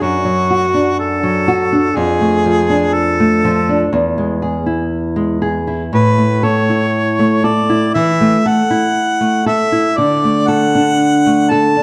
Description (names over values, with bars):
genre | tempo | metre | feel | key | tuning
romantic duo for harmonica and classical guitar | 60 BPM | 4/4 | rubato | A major | A4 = 440 Hz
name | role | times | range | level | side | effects
clear harmonica | melody | 0.0-11.8 s | F#4 to A5 | -18 LUFS | equal | none
nylon-string guitar | accompaniment | 0.0-11.8 s | E2 to A4 | -16 LUFS | equal | none
room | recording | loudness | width
moderate recital hall reverb, RT60 1.3 s | dark, warm production | -14 LUFS | mono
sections
0.0-11.8 A section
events
none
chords
0.0 D/F#; 2.0 Dm/F; 3.9 E; 5.9 A; 10.0 D